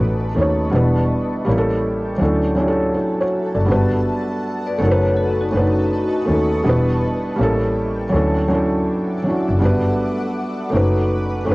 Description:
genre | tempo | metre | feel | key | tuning
hip hop | 81 BPM | 4/4 | swing 65% on 16ths | unclear | A4 = 440 Hz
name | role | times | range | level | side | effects
felt-muted upright piano | accompaniment | 0.0-11.5 s | F#3 to D5 | -18 LUFS | equal | cassette tape
granular cloud pad | sustained chords | 0.0-11.5 s | A4 to D6 | -29 LUFS | equal | built-in reverb, cassette tape
clear double bass | bass | 0.0-11.5 s | E1 to D#2 | -20 LUFS | equal | none
vibraphone with medium mallets | second line | 4.7-6.5 s | D#4 to D5 | -23 LUFS | left 2 dB | cassette tape, analog delay
room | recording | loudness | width
moderate booth ambience, RT60 0.2 s | home recording on cassette | -16 LUFS | side -22 dB against mid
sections
0.0-11.5 A section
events
none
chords
0.0 B9; 0.7 Em7; 1.5 A7b9; 2.2 Dmaj9; 3.7 Gmaj7; 4.8 B9/F#; 6.7 Em7; 7.4 A7b9; 8.1 Dmaj9; 9.6 Gmaj7; 10.7 B9/F#

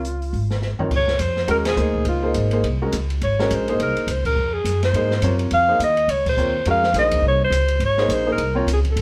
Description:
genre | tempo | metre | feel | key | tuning
modal jazz | 208 BPM | 4/4 | swing 59% on 8ths | Db major | A4 = 439 Hz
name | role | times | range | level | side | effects
warm alto saxophone | melody | 0.0-9.0 s | F4 to F5 | -23 LUFS | equal | none
clear concert grand piano | accompaniment | 0.0-8.7 s | C3 to Db5 | -26 LUFS | equal | none
upright bass | bass | 0.0-9.0 s | Ab1 to Ab2 | -25 LUFS | equal | none
open jazz drum kit | drums | 0.0-9.0 s | crash cymbal, hi-hat, kick drum, ride cymbal, snare drum, toms | -31 LUFS | equal | none
room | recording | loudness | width
moderate stone room reverb, RT60 1.0 s | band playing live in one room | -20 LUFS | mono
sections
0.9-9.0 A section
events
drum fill 0.6; band accent 1.6, 4.2, 6.2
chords
0.0 Db; 0.9 Dbmaj9

